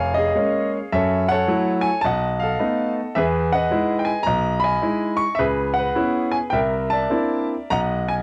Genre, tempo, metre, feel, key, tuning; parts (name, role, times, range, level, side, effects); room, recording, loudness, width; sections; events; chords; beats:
solo jazz; 106 BPM; 4/4; swing 67% on 8ths, rubato; A4 = 440 Hz
clear grand piano; solo; 0.0-8.2 s; F1 to Db6; -21 LUFS; equal; cassette tape
light reverb; home recording on cassette; -21 LUFS; mono
0.0-8.2 A section
0.0 Bbm7; 0.9 Gbm7; 2.0 B7; 3.2 Emaj7; 5.4 Dbm7; 6.5 C9; 7.7 B
0.36 | 0.93 1.49 2.05 2.60 | 3.16 3.72 4.27 4.83 | 5.40 5.96 6.53 7.12 | 7.71